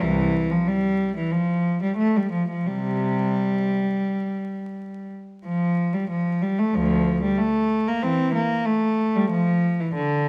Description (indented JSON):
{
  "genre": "classical, baroque-style suite movement for unaccompanied cello",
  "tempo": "85-95 BPM",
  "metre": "4/4",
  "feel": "rubato",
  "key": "F major",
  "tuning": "A4 = 436 Hz",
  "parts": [
    { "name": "rich cello", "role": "solo", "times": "0.0-10.3 s", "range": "C2 to C4", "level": "-23 LUFS", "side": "equal", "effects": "none" }
  ],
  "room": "moderate stone room reverb, RT60 1.3 s",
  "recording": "vinyl crackle",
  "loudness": "-23 LUFS",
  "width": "mono",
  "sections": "0.0-5.4 A section; 5.4-10.3 B section",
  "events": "none",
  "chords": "none",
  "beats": "| 0.01 0.67 1.32 1.98 | 2.67 3.37 4.07 4.76 | 5.45 6.10 6.75 7.38 | 8.03 8.66 9.31 9.95"
}